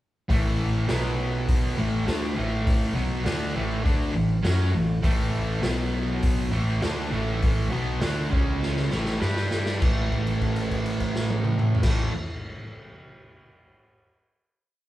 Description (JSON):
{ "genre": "garage rock duo or trio", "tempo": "101 BPM", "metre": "4/4", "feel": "straight", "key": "A major", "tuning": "A4 = 441 Hz", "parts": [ { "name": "fuzz guitar", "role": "riff", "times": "0.3-12.1 s", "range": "A2 to G4", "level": "-26 LUFS", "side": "equal", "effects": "distortion" }, { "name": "hollow-body short-scale picked electric bass", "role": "bass", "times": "0.3-12.1 s", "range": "A1 to G2", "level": "-29 LUFS", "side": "equal", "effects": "none" }, { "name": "raw garage drum kit", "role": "drums", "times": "0.3-12.0 s", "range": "crash cymbal, hi-hat, kick drum, snare drum, toms", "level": "-27 LUFS", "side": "equal", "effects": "none" } ], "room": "moderate large studio reverb, RT60 1.1 s", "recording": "band playing live in one room", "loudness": "-22 LUFS", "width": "side -15 dB against mid", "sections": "0.3-9.8 riff; 9.8-12.2 final chord", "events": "drum fill 8.6-9.8; held note 9.8-11.8", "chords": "0.3 A5; 0.9 B5; 1.8 A5; 5.6 B5; 6.5 A5; 8.3 C#5; 8.9 A5; 9.2 G5; 9.8 A5" }